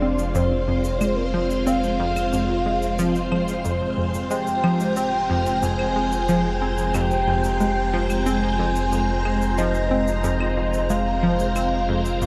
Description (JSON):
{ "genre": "ambient, sequencer-driven space music", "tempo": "91 BPM", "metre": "4/4", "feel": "straight", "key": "F minor", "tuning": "A4 = 440 Hz", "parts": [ { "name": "soft octave-layered synth lead", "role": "melody", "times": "0.0-12.3 s", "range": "Bb4 to Ab5", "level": "-27 LUFS", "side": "equal", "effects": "chorus, phaser, analog delay" }, { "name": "string machine, full ensemble", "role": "sustained chords", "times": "0.0-12.3 s", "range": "Ab3 to Bb5", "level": "-28 LUFS", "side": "equal", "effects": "phaser, ensemble chorus" }, { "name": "analog pluck", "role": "riff", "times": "0.0-12.3 s", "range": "F2 to C4", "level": "-27 LUFS", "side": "equal", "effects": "chorus, analog delay" }, { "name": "round analog bass", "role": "bass", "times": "0.0-12.3 s", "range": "F1", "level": "-30 LUFS", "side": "equal", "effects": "none" }, { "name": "wind-like tuned noise texture", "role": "texture", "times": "0.0-12.3 s", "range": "C5", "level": "-37 LUFS", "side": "equal", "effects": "built-in reverb" }, { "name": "shaker and claves", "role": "percussion", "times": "0.2-12.3 s", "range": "none", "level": "-40 LUFS", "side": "equal", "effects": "overdrive" } ], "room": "wet huge ambient reverb, RT60 9.2 s", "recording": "none", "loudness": "-22 LUFS", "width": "mono", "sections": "0.0-12.3 A section", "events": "none", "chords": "0.0 Fm" }